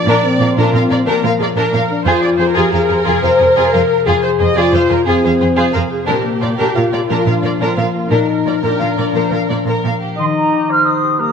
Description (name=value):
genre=cinematic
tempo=119 BPM (dotted quarters)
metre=12/8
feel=straight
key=unclear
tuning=A4 = 435 Hz
part: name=warm symphonic viola section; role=accompaniment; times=0.0-9.9 s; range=F4 to Eb5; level=-20 LUFS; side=right 3 dB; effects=none
part: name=mellow French horn section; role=sustained chords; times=0.0-11.3 s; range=Bb3 to C5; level=-16 LUFS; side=left 3 dB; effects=none
part: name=concert harp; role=arpeggios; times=0.0-11.3 s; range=F2 to Bb5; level=-23 LUFS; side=left 4 dB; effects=none
part: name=warm symphonic violin section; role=melody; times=0.1-9.9 s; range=Ab4 to F5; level=-21 LUFS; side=left 2 dB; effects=none
part: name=warm symphonic violin section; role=second line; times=0.1-10.2 s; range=D4 to C5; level=-21 LUFS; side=left 1 dB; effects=none
part: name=rich symphonic cello section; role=bass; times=0.1-9.9 s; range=F2 to Bb2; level=-20 LUFS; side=right 4 dB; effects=none
part: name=clear clarinet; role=second line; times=10.2-11.3 s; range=Eb4 to G4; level=-22 LUFS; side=left 1 dB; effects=none
part: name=mellow small flute group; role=second line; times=10.2-11.3 s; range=Bb5 to F6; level=-14 LUFS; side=right 2 dB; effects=none
part: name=warm cor anglais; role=second line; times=10.2-11.3 s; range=Bb4 to Eb5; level=-21 LUFS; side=right 2 dB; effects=none
room=wet scoring stage reverb, RT60 1.6 s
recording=none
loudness=-12 LUFS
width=side -6 dB against mid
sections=0.0-10.2 A section; 10.2-11.3 A section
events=none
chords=0.0 Bb; 2.1 Fm; 6.1 Bb; 10.2 Eb